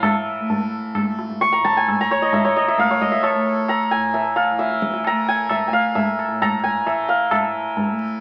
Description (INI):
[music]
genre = indian classical, Hindustani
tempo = 132 BPM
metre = 4/4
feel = straight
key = unclear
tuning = A4 = 440 Hz
[part]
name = santur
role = melody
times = 0.0-8.2 s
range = C#5 to C#6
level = -21 LUFS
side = equal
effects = none
[part]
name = tanpura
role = drone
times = 0.0-8.2 s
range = A2 to A3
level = -31 LUFS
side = equal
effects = none
[part]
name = tabla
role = percussion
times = 0.0-7.9 s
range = none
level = -27 LUFS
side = equal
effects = none
[sound]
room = moderate studio reverb, RT60 0.7 s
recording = very old 78 rpm record, vinyl crackle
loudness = -20 LUFS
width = mono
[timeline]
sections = 0.0-7.3 A section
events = none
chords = none